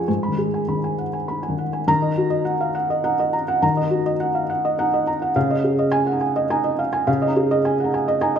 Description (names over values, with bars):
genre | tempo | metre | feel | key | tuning
neoclassical minimalist piano | 104 BPM | 3/4 | rubato | unclear | A4 = 437 Hz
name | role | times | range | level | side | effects
felt-muted upright piano | solo | 0.0-8.4 s | G#2 to C#6 | -18 LUFS | equal | none
room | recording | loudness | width
moderate recital hall reverb, RT60 1.6 s | none | -18 LUFS | side -8 dB against mid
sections
0.0-1.9 A section; 1.9-8.4 B section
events
none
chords
0.1 G#m7; 1.9 D#m; 5.4 C#add9